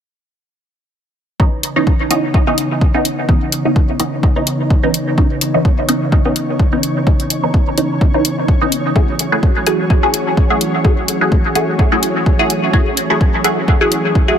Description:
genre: dub techno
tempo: 127 BPM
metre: 4/4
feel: swing 55% on 16ths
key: C# minor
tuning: A4 = 440 Hz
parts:
  - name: airy breathy pad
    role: sustained chords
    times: 1.7-14.4 s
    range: C#3 to G#4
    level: -21 LUFS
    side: right 1 dB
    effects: chorus, sidechain pumping
  - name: filtered dub chord stab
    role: stabs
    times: 1.4-14.4 s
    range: E3 to G#4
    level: -17 LUFS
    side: equal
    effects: phaser, sidechain pumping, dub echo
  - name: electronic kick drum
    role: drums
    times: 1.4-14.3 s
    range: none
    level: -13 LUFS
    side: equal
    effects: none
  - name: flickering grainy texture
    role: texture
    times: 2.3-14.4 s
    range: C#4 to C#5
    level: -26 LUFS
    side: equal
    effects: built-in reverb, sidechain pumping
  - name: electronic hi-hat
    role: drums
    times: 1.6-14.0 s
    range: none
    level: -18 LUFS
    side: left 1 dB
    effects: none
room: light reverb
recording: none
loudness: -12 LUFS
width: side -8 dB against mid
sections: 1.4-14.4 A section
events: filter sweep on synth stab 1.4-14.4; filter sweep on analog synth pad 1.4-14.4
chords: 1.4 C#m9; 9.0 F#m9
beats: | 1.40 1.87 2.34 2.81 | 3.29 3.76 4.23 4.71 | 5.18 5.65 6.12 6.59 | 7.07 7.54 8.01 8.48 | 8.96 9.43 9.90 10.37 | 10.85 11.32 11.79 12.26 | 12.74 13.21 13.68 14.15

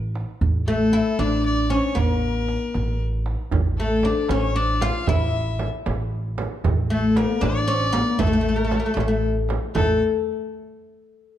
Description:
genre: Persian modal ensemble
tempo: 77 BPM (dotted quarters)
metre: 6/8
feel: straight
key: A dastgah homayun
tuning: A4 = 439 Hz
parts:
  - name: upright bass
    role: bass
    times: 0.0-10.0 s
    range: A1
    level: -25 LUFS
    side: equal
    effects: none
  - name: tombak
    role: percussion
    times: 0.2-10.0 s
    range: none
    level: -27 LUFS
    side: right 2 dB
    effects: none
  - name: oud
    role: melody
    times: 0.7-10.0 s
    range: A3 to F4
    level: -22 LUFS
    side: left 2 dB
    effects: none
  - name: bright violin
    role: second line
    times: 0.7-10.0 s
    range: A4 to F5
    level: -29 LUFS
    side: left 2 dB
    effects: none
  - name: frame drum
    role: percussion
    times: 3.5-10.0 s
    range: none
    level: -30 LUFS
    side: right 4 dB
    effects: none
room: light reverb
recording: dark, warm production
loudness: -20 LUFS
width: side -11 dB against mid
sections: 0.0-9.7 A section; 9.7-11.3 B section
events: none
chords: none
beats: | 0.41 1.19 | 1.97 2.75 | 3.52 4.30 | 5.08 5.86 | 6.64 7.41 | 8.19 8.97 | 9.75

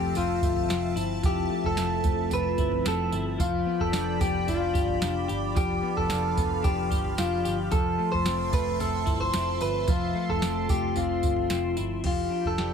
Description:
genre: dream pop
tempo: 111 BPM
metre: 4/4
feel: straight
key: F lydian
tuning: A4 = 440 Hz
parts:
  - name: electric guitar at the edge of break-up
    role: melody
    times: 0.0-12.7 s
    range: F4 to C5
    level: -28 LUFS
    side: equal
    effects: digital delay
  - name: phased analog pad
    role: sustained chords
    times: 0.0-12.7 s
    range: F3 to C6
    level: -34 LUFS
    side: right 1 dB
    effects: phaser, chorus
  - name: clean electric guitar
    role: arpeggios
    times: 0.0-12.7 s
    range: F3 to G4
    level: -32 LUFS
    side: left 8 dB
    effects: lush chorus, digital delay
  - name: vintage muted picked electric bass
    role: bass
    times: 0.0-12.7 s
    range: F1 to G1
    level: -32 LUFS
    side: right 1 dB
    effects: none
  - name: soft vintage rhythm box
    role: drums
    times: 0.2-12.7 s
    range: crash cymbal, kick drum, snare drum, tambourine, toms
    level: -29 LUFS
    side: right 2 dB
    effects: overdrive
room: light reverb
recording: none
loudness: -24 LUFS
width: side -7 dB against mid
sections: 0.0-12.0 A section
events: none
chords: 0.0 Fmaj7; 3.4 G7/F; 7.7 Fmaj7; 12.0 G7/F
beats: 0.15 0.69 | 1.23 1.77 2.31 2.86 | 3.40 3.94 4.48 5.02 | 5.56 6.10 6.64 7.18 | 7.72 8.26 8.80 9.34 | 9.88 10.42 10.96 11.51 | 12.04 12.59

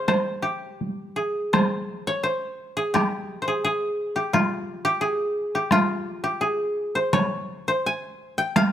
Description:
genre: japanese traditional, Japanese chamber music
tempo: 85 BPM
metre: 2/4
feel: rubato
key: C miyako bushi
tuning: A4 = 441 Hz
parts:
  - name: koto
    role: melody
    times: 0.0-8.7 s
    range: F4 to Ab5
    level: -24 LUFS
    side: equal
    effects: none
  - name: taiko ensemble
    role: percussion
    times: 0.1-8.7 s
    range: none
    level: -23 LUFS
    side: equal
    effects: none
room: light reverb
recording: close, detailed microphones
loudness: -22 LUFS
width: side -10 dB against mid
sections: 0.0-1.5 A section; 1.5-8.7 B section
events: none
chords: none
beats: | 0.08 0.80 | 1.53 2.25 | 2.95 3.65 | 4.34 5.02 | 5.71 6.42 | 7.13 7.85 | 8.55

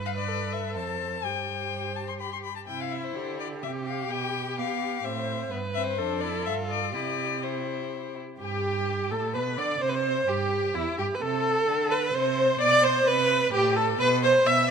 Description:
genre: quick classical-period movement for string quartet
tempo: 128 BPM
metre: 3/4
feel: straight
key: C major, G major from 8.4 s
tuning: A4 = 445 Hz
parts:
  - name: rich violin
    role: second line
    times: 0.0-14.7 s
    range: B3 to E5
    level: -33 LUFS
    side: left 3 dB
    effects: none
  - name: rich viola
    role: accompaniment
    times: 0.0-14.7 s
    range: E4 to E5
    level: -27 LUFS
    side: right 2 dB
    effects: none
  - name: rich cello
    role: bass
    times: 0.0-14.7 s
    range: E2 to B3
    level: -32 LUFS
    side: right 6 dB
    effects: none
  - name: rich violin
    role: melody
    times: 0.1-14.5 s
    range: E4 to C6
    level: -31 LUFS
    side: left 13 dB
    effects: none
room: moderate scoring stage reverb, RT60 2.1 s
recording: close, detailed microphones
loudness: -24 LUFS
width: side -6 dB against mid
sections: 0.0-8.4 A section; 8.4-14.7 B section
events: none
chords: 0.0 G69; 0.8 F; 1.2 C5/G; 2.7 C; 4.1 G/B; 5.0 Am; 5.5 Gadd11; 6.0 Dm7/F; 6.5 G5; 6.9 C; 8.4 G; 9.8 C; 11.2 D5/C; 12.6 Am11; 14.0 Cmaj7/B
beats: 0.29 0.76 | 1.24 1.73 2.21 | 2.69 3.16 3.64 | 4.11 4.58 5.05 | 5.51 5.99 6.46 | 6.94 7.43 7.91 | 8.40 8.88 9.35 | 9.81 10.28 10.75 | 11.21 11.68 12.14 | 12.61 13.07 13.54 | 14.00 14.47

